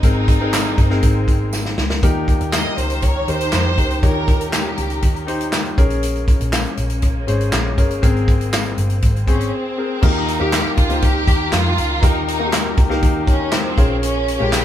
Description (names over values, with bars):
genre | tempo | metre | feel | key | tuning
piano-driven pop | 120 BPM | 4/4 | straight | Eb mixolydian | A4 = 439 Hz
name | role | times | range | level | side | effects
warm symphonic violin section | melody | 0.0-5.3, 9.3-14.6 s | C4 to Eb5 | -23 LUFS | right 1 dB | none
warm concert grand piano | accompaniment | 0.0-14.6 s | Bb2 to Db5 | -23 LUFS | left 2 dB | none
dark studio string section | sustained chords | 0.0-14.6 s | Eb3 to Bb4 | -30 LUFS | left 2 dB | none
vintage muted picked electric bass | bass | 0.0-14.6 s | G1 to F2 | -22 LUFS | equal | none
natural country drum kit | drums | 0.0-14.6 s | crash cymbal, handclaps, hi-hat, kick drum, snare drum | -17 LUFS | equal | none
tambourine | percussion | 0.5-8.6 s | none | -33 LUFS | right 6 dB | none
room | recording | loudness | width
light reverb | band playing live in one room | -15 LUFS | side -11 dB against mid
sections
0.0-2.0 A section; 2.0-10.0 B section; 10.0-14.6 A section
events
drum fill 1.5-2.0; break 9.5-10.0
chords
0.0 Abadd9; 2.0 Eb; 5.8 Bbm7; 8.0 Abadd9; 10.0 Eb; 13.8 Bbm7